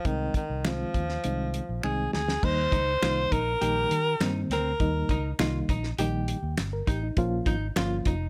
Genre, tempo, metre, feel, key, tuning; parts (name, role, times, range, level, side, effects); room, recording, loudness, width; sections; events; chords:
uptempo 1960s-style soul; 101 BPM; 4/4; straight; Eb mixolydian; A4 = 440 Hz
clear alto saxophone; melody; 0.0-5.4 s; Eb3 to C5; -31 LUFS; equal
reed electric piano; accompaniment; 0.0-8.1 s; Eb3 to Bb4; -34 LUFS; equal; overdrive, fast tremolo
fingered electric bass; bass; 0.0-8.3 s; F1 to Eb3; -33 LUFS; equal
cloth-damped thuddy drum kit; drums; 0.1-8.2 s; crash cymbal, hi-hat, kick drum, snare drum; -32 LUFS; equal
finger snaps; percussion; 0.6-7.9 s; -38 LUFS; equal
archtop guitar, miked and amplified; riff; 2.7-8.3 s; C4 to G4; -38 LUFS; equal
light reverb, studio ambience; -27 LUFS; mono
0.0-2.4 A section; 2.4-8.3 B section
drum fill 1.8-2.4
0.1 Ab/C; 2.4 Eb; 7.2 Bbm